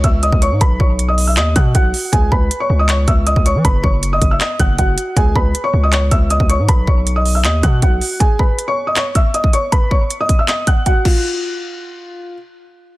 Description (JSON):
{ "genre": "hip hop, trap", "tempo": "158 BPM", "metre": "4/4", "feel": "half-time", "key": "C# minor", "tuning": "A4 = 441 Hz", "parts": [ { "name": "felt-muted upright piano", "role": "melody", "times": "0.0-12.3 s", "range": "E#4 to F#6", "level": "-18 LUFS", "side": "equal", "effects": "tape echo" }, { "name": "distorted 808-style bass", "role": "bass", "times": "0.0-8.0 s", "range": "F#1 to E3", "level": "-15 LUFS", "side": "equal", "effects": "distortion" }, { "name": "trap drum kit", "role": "drums", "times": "0.0-11.1 s", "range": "crash cymbal, handclaps, hi-hat, kick drum", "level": "-15 LUFS", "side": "equal", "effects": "none" } ], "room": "little or no reverb", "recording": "dense, heavily limited modern master", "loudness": "-12 LUFS", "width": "side -18 dB against mid", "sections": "0.0-11.2 A section; 11.2-13.0 B section", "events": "none", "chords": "0.0 C#m; 0.6 B; 2.1 C#m; 3.6 F#5; 5.2 C#m; 6.7 B; 8.2 C#m; 9.7 F#5; 11.1 N.C.", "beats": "0.23 | 0.61 0.99 1.37 1.75 | 2.13 2.51 2.89 3.27 | 3.65 4.03 4.41 4.79 | 5.17 5.55 5.93 6.30 | 6.68 7.07 7.45 7.82 | 8.20 8.58 8.96 9.34 | 9.72 10.10 10.48 10.86 | 11.24 11.62 12.00" }